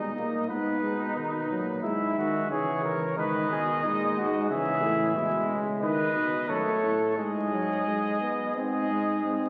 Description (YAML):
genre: classical, imitative canzona for brass ensemble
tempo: 90 BPM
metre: 4/4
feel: straight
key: unclear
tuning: A4 = 439 Hz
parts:
  - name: warm trumpet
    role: melody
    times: 0.0-9.5 s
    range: B4 to E5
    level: -33 LUFS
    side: equal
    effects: none
  - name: warm flugelhorn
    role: second line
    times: 0.0-9.5 s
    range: D#4 to B4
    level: -34 LUFS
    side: equal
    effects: none
  - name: warm trombone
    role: accompaniment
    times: 0.0-9.5 s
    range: D#3 to B#3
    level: -34 LUFS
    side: equal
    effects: none
  - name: warm tuba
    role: bass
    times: 0.0-9.5 s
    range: F#2 to D#3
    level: -34 LUFS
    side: equal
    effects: none
room: wet church reverb, RT60 2.6 s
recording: very old 78 rpm record, vinyl crackle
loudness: -28 LUFS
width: mono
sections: 0.0-9.5 A section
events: none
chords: 0.5 G#m; 1.8 C#m/G#; 3.2 G#m; 4.5 C#m; 5.8 D#dim; 7.2 G#5; 8.6 G#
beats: 0.50 1.17 | 1.84 2.50 3.18 3.85 | 4.50 5.16 5.82 6.49 | 7.17 7.87 8.56 9.25